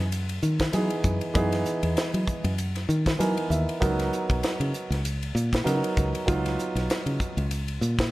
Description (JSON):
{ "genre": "electric jazz fusion", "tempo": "97 BPM", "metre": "4/4", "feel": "swing 55% on 16ths", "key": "F# mixolydian", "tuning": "A4 = 442 Hz", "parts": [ { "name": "dark baby grand piano", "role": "accompaniment", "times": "0.0-7.4 s", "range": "E3 to G#5", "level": "-28 LUFS", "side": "right 2 dB", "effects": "none" }, { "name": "fingered electric bass", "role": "bass", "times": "0.0-8.1 s", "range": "B1 to F#3", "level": "-26 LUFS", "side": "equal", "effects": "none" }, { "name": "crisp fusion drum kit", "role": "drums", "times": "0.0-8.1 s", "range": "hi-hat, kick drum, ride cymbal, snare drum", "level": "-30 LUFS", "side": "equal", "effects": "none" } ], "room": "light reverb", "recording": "none", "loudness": "-24 LUFS", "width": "side -18 dB against mid", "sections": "0.0-8.1 A section", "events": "grand piano fill 2.9-3.8", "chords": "0.0 F#13sus4; 3.8 C#13sus4" }